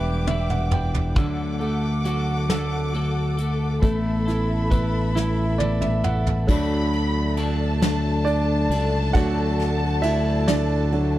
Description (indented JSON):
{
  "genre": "six-eight pop ballad",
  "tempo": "45 BPM (dotted quarters)",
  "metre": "6/8",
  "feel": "straight",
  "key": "D major",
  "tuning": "A4 = 440 Hz",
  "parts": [
    { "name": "clear grand piano", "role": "accompaniment", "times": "0.0-11.2 s", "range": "D3 to G5", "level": "-27 LUFS", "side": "right 3 dB", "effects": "none" },
    { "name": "warm studio string section", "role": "sustained chords", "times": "0.0-11.2 s", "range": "A3 to D6", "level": "-31 LUFS", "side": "left 2 dB", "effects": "none" },
    { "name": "twelve-string electric guitar", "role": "arpeggios", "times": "0.0-11.2 s", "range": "D3 to B4", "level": "-30 LUFS", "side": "left 4 dB", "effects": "none" },
    { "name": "modern bright fingered electric bass", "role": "bass", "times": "0.0-11.2 s", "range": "E1 to D2", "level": "-23 LUFS", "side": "equal", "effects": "none" },
    { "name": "soft brush drum kit", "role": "drums", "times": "0.3-11.1 s", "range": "crash cymbal, hi-hat, kick drum, ride cymbal, snare drum, toms", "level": "-24 LUFS", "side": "equal", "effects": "none" },
    { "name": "warm studio violin section", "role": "second line", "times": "6.5-11.2 s", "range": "A5 to B5", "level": "-30 LUFS", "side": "left 2 dB", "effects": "none" }
  ],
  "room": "little or no reverb",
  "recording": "none",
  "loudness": "-20 LUFS",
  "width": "side -14 dB against mid",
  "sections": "0.0-6.5 A section; 6.5-11.2 B section",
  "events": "drum fill 0.0-1.2, 5.2-6.5; grand piano fill 0.0-1.2, 5.2-6.5; grand piano solo 6.5-11.2",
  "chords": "0.0 Em7; 1.2 D; 3.8 Asus2; 6.5 D"
}